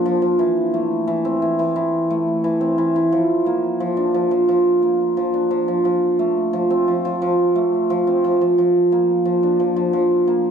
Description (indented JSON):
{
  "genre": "folktronica",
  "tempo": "88 BPM",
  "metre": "4/4",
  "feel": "straight",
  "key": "unclear",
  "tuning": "A4 = 444 Hz",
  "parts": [
    { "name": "cimbalom", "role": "solo", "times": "0.0-10.5 s", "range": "E3 to D4", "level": "-16 LUFS", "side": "right 1 dB", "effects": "digital delay" }
  ],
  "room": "light reverb",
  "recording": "dark, warm production",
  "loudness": "-16 LUFS",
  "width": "side -7 dB against mid",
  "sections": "0.0-3.1 A section; 3.1-10.5 B section",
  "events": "none",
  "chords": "0.4 Am; 3.1 Fsus4"
}